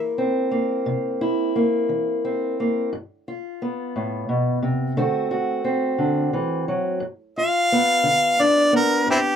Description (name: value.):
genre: acoustic country blues, solo or duo.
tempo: 58 BPM (dotted quarters).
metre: 12/8.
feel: straight.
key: G mixolydian.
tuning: A4 = 439 Hz.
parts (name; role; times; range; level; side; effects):
clear harmonica; melody; 0.0-0.1, 7.4-9.4 s; C4 to F5; -18 LUFS; equal; none.
fingerpicked steel-string acoustic guitar; accompaniment; 0.0-9.4 s; G2 to F#4; -21 LUFS; equal; none.
room: wet booth ambience, RT60 0.2 s.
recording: none.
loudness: -19 LUFS.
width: side -8 dB against mid.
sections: 0.0-7.0 A section; 7.0-9.4 B section.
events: harmonica solo 7.0-9.4.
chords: 0.0 C7; 2.9 G7; 5.0 D7; 7.0 G7.